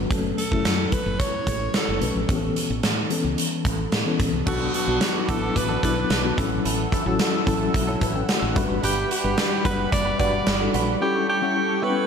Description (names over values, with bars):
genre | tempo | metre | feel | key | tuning
1980s-style pop | 110 BPM | 4/4 | straight | unclear | A4 = 440 Hz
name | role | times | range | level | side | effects
FM electric piano with tremolo | accompaniment | 0.0-12.1 s | E3 to A5 | -26 LUFS | left 5 dB | slapback echo
woody fretless electric bass | bass | 0.0-10.9 s | F#1 to A2 | -28 LUFS | right 1 dB | none
big rock drum kit | drums | 0.1-10.9 s | crash cymbal, hi-hat, kick drum, snare drum | -25 LUFS | right 1 dB | none
bright alto saxophone | melody | 0.4-12.1 s | F#4 to D5 | -27 LUFS | right 1 dB | digital delay
warm analog pad | sustained chords | 4.5-12.1 s | G3 to E6 | -30 LUFS | right 1 dB | chorus, tremolo
direct-recorded clean electric guitar | riff | 4.5-12.1 s | C#4 to C#5 | -32 LUFS | right 6 dB | analog chorus, slapback echo, digital delay
room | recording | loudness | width
moderate lush hall reverb, RT60 3.0 s | big arena sound | -20 LUFS | side -6 dB against mid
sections
0.0-4.5 A section; 4.5-12.1 B section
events
FM electric piano fill 7.7-8.8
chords
0.1 F#m; 2.3 Aadd9; 4.5 Bm7; 6.4 F#m7/A; 8.6 Gmaj7; 11.0 A7